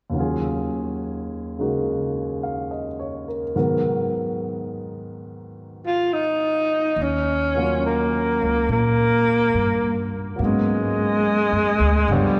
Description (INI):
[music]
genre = jazz ballad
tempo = 70 BPM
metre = 4/4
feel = swing 69% on 8ths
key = Eb minor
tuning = A4 = 440 Hz
[part]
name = dark concert grand piano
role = accompaniment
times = 0.1-12.4 s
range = Eb2 to F5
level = -28 LUFS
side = equal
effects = none
[part]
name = breathy tenor saxophone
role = melody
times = 5.9-12.4 s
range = G3 to F4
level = -22 LUFS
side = equal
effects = none
[part]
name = upright bass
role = bass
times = 7.0-12.4 s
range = Db2 to Bb2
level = -26 LUFS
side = equal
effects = none
[sound]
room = wet church reverb, RT60 3.0 s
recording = recorded in a church or concert hall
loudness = -22 LUFS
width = mono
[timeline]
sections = 0.1-7.0 A section; 7.0-12.4 B section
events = none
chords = 0.1 Ebm11; 3.5 Abm9; 7.0 Ebm9; 10.4 Abm11